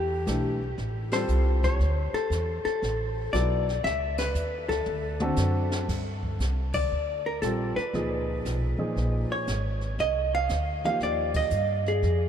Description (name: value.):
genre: jazz, small-group swing and bop.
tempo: 117 BPM.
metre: 4/4.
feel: swing 67% on 8ths.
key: unclear.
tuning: A4 = 440 Hz.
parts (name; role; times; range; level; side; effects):
vintage hollow-body jazz guitar; melody; 0.0-12.3 s; G4 to F5; -29 LUFS; left 1 dB; none.
upright bass; bass; 0.0-12.3 s; G#1 to G2; -28 LUFS; equal; none.
warm grand piano; accompaniment; 0.3-11.5 s; Bb2 to A4; -33 LUFS; right 1 dB; none.
jazz brush drum kit; drums; 0.3-12.3 s; brushed snare drum, crash cymbal, hi-hat, kick drum, ride cymbal, snare drum, toms; -36 LUFS; equal; none.
room: moderate huge ambient reverb, RT60 8.4 s.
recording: in a vast, echoing space.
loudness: -25 LUFS.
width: side -8 dB against mid.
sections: 0.0-5.9 A section; 5.9-12.3 B section.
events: band accent 1.0, 4.1, 6.7, 11.3; drum fill 4.9-5.9.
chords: 0.0 Em7; 0.8 Am7b13; 1.8 Dadd9; 3.8 C#m9; 4.9 D7; 5.9 Gm7; 7.9 C#9; 10.0 Cm11.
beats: 0.26 0.77 1.28 | 1.80 2.31 2.82 3.33 | 3.84 4.35 4.87 5.38 | 5.89 6.40 6.91 7.42 | 7.94 8.45 8.96 9.47 | 9.98 10.49 11.01 11.52 | 12.03.